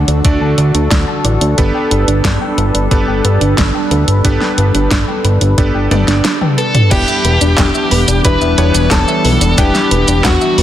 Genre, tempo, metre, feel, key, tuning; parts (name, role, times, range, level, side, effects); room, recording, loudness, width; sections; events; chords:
synthwave; 90 BPM; 4/4; straight; E minor; A4 = 441 Hz
chorused pulse-width pad; sustained chords; 0.0-10.6 s; D3 to B4; -18 LUFS; left 1 dB; sidechain pumping
soft round pluck; arpeggios; 0.0-10.6 s; D4 to A5; -21 LUFS; equal; chorus, digital delay
bright electric grand piano; stabs; 0.0-10.6 s; G3 to D5; -21 LUFS; right 2 dB; digital delay
fat analog bass; bass; 0.0-10.6 s; E1 to D2; -14 LUFS; equal; tube saturation
pop drum kit; drums; 0.1-10.6 s; crash cymbal, handclaps, hi-hat, shaker, snare drum, toms; -16 LUFS; equal
electronic kick drum; drums; 0.2-10.4 s; -17 LUFS; equal
smooth overdriven lead guitar; melody; 6.6-10.6 s; F#4 to B4; -16 LUFS; left 1 dB
soft synth bell; second line; 6.9-10.6 s; F#5 to B5; -24 LUFS; equal; chorus
moderate plate reverb, RT60 2.1 s; dense, heavily limited modern master; -10 LUFS; side -12 dB against mid
0.0-6.9 A section; 6.9-10.6 B section
drum fill 5.9-6.9
0.0 D; 1.6 Gadd9; 6.9 Em7